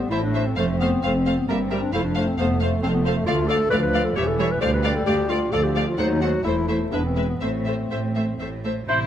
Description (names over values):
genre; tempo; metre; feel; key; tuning
quick classical-period movement for symphony orchestra; 119-138 BPM; 3/4; rubato; A minor; A4 = 441 Hz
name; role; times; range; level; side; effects
mellow clarinet; second line; 0.0-8.4 s; A3 to C5; -25 LUFS; left 1 dB; none
mellow French horn section; sustained chords; 0.0-8.6 s; E3 to C4; -29 LUFS; left 4 dB; none
warm studio cello section; bass; 0.0-9.1 s; D2 to C3; -28 LUFS; right 2 dB; none
warm studio double bass section; bass; 0.0-9.1 s; E1 to D#2; -27 LUFS; right 3 dB; none
warm studio violin section; melody; 0.1-9.1 s; E4 to F#5; -33 LUFS; left 3 dB; none
warm studio violin section; second line; 0.1-9.0 s; E4 to D5; -30 LUFS; left 3 dB; none
rich studio viola section; accompaniment; 0.1-8.7 s; G3 to A3; -30 LUFS; right 2 dB; none
clear oboe; second line; 8.9-9.0 s; C5; -20 LUFS; right 2 dB; none
room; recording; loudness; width
light reverb; close, detailed microphones; -20 LUFS; side -10 dB against mid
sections
0.0-8.9 A section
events
none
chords
0.0 Am; 0.6 F; 1.5 Edim/G; 1.9 F; 3.3 Dm; 4.2 C#dim/E (rootless); 4.6 Dm; 6.0 D#dim7; 6.4 Am/E; 6.9 E; 7.4 Am